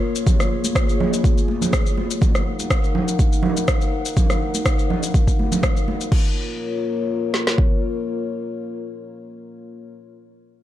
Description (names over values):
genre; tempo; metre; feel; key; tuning
afro house; 123 BPM; 4/4; swing 54% on 16ths; Bb minor; A4 = 440 Hz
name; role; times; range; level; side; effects
dark analog pad; sustained chords; 0.0-9.9 s; Bb3 to Gb5; -26 LUFS; left 2 dB; chorus, sidechain pumping
afro-pop drum kit; drums; 0.2-6.2 s; crash cymbal, rim click, shaker; -27 LUFS; left 1 dB; overdrive
afro-pop drum kit; drums; 0.3-7.7 s; kick drum, snare drum; -18 LUFS; equal; overdrive
congas; percussion; 0.3-6.0 s; none; -25 LUFS; right 2 dB; none
room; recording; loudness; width
light reverb, digital ambience; dark, warm production; -18 LUFS; side -13 dB against mid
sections
0.0-6.1 A section; 6.1-10.0 B section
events
none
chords
0.0 Bbm7; 2.2 Ebm; 6.1 Bbm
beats
| 0.27 0.75 1.24 1.73 | 2.22 2.70 3.19 3.68 | 4.17 4.66 5.14 5.63 | 6.12 6.61 7.09 7.58 | 8.07 8.56 9.05 9.53